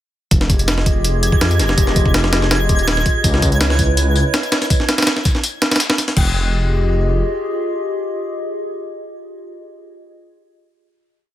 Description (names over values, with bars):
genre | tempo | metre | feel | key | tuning
drum and bass, jungle | 164 BPM | 4/4 | straight | F minor | A4 = 440 Hz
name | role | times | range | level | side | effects
warbly tape-like pad | sustained chords | 0.3-9.6 s | Fb4 to Eb5 | -23 LUFS | left 1 dB | chorus, built-in reverb, vintage 12-bit sampler grit
dark detuned saw bass | bass | 0.3-7.2 s | Eb1 to F2 | -17 LUFS | equal | tube saturation
breakbeat sampler-style drum kit | drums | 0.3-6.2 s | crash cymbal, hi-hat, kick drum, snare drum | -16 LUFS | equal | small room ambience
twinkling granular texture | texture | 0.6-4.7 s | Ab6 | -25 LUFS | right 3 dB | built-in reverb
dusty soul sampler-style drum kit | drums | 3.2-6.2 s | hi-hat, snare drum, tambourine | -25 LUFS | left 4 dB | overdrive, high-pass filter on perc, small room ambience, high-pass filter on snare, high-pass filter on hats, high-pass filter on room
room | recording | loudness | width
light reverb | none | -14 LUFS | side -13 dB against mid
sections
0.3-6.2 drop; 6.2-9.1 final chord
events
drop 0.3-6.2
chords
0.3 Fm9; 3.2 Dbm9; 4.7 N.C.; 6.2 Fm9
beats
| 0.31 0.68 1.05 1.41 | 1.78 2.14 2.51 2.88 | 3.24 3.61 3.97 4.34 | 4.70 5.07 5.44 5.80 | 6.17 6.53 6.90 7.26 | 7.63 8.00 8.36 8.73